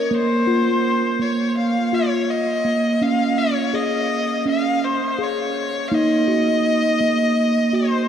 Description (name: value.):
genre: world meditative, meditative tuned percussion.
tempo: 82 BPM.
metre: 4/4.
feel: straight.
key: Bb minor.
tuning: A4 = 442 Hz.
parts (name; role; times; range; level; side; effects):
rich violin; melody; 0.0-8.1 s; C5 to F5; -21 LUFS; left 3 dB; tape echo.
steel tongue drum; arpeggios; 0.0-8.1 s; Bb3 to Bb4; -19 LUFS; right 2 dB; tape echo.
room: wet cathedral reverb, RT60 5.7 s.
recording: in a vast, echoing space.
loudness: -17 LUFS.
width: side -8 dB against mid.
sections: 0.0-8.1 A section.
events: none.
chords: 0.0 Bbm; 3.0 Db5; 5.9 Ebm.